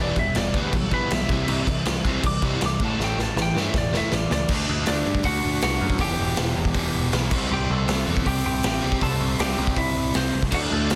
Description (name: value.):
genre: punk rock.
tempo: 159 BPM.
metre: 4/4.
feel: straight.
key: unclear.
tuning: A4 = 440 Hz.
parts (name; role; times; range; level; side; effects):
lightly driven lead guitar; melody; 0.0-11.0 s; C4 to D6; -31 LUFS; equal; none.
biting overdriven guitar; riff; 0.0-4.5, 10.5-11.0 s; A2 to D4; -31 LUFS; equal; none.
overdriven electric guitar; riff; 0.0-11.0 s; E2 to D4; -29 LUFS; equal; none.
growling picked electric bass; bass; 0.0-11.0 s; E1 to G2; -30 LUFS; equal; overdrive.
raw garage drum kit; drums; 0.2-11.0 s; crash cymbal, hi-hat, kick drum, snare drum; -28 LUFS; equal; none.
room: light reverb.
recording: dense, heavily limited modern master.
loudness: -23 LUFS.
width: mono.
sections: 0.0-4.5 A section; 4.5-11.0 B section.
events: lead electric guitar solo 0.0-4.5; drum fill 3.0-4.5.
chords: 0.0 Em; 1.3 C; 2.8 A5; 4.5 D; 6.0 Em; 7.3 C.